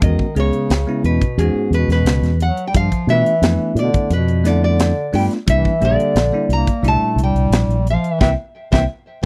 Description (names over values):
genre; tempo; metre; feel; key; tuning
electric jazz fusion; 88 BPM; 4/4; straight; unclear; A4 = 438 Hz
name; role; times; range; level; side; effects
nylon-string guitar; melody; 0.0-9.3 s; G#4 to Bb5; -23 LUFS; equal; none
clear bass clarinet; second line; 0.0-8.8 s; G#2 to Bb3; -26 LUFS; equal; none
bell-like tine electric piano; accompaniment; 0.0-8.8 s; Bb2 to G#4; -24 LUFS; equal; none
fingered electric bass with an envelope filter; bass; 0.0-8.8 s; Bb1 to B2; -19 LUFS; equal; none
crisp fusion drum kit; drums; 0.0-8.9 s; hi-hat, kick drum, snare drum; -21 LUFS; equal; none
room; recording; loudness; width
little or no reverb; dry, close 1970s-style studio recording; -17 LUFS; mono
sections
0.0-9.3 A section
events
band accent 8.2-9.3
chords
0.0 E6; 2.7 G9; 5.5 C7